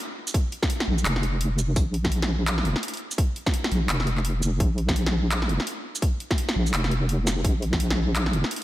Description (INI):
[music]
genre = half-time drum and bass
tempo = 169 BPM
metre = 4/4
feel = swing 60% on 16ths, half-time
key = unclear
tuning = A4 = 438 Hz
[part]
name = drum and bass drum kit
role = drums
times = 0.3-8.6 s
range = handclaps, hi-hat, shaker, snare drum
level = -27 LUFS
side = equal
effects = overdrive, studio reverb
[part]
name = electronic kick drum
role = drums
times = 0.3-7.8 s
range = none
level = -24 LUFS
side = equal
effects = overdrive, studio reverb
[part]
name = deep soft wobble bass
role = bass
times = 0.9-8.4 s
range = F1 to Bb1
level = -24 LUFS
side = equal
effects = chorus
[sound]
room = light reverb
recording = none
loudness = -22 LUFS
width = side -15 dB against mid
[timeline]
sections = 0.0-8.6 A section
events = none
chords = none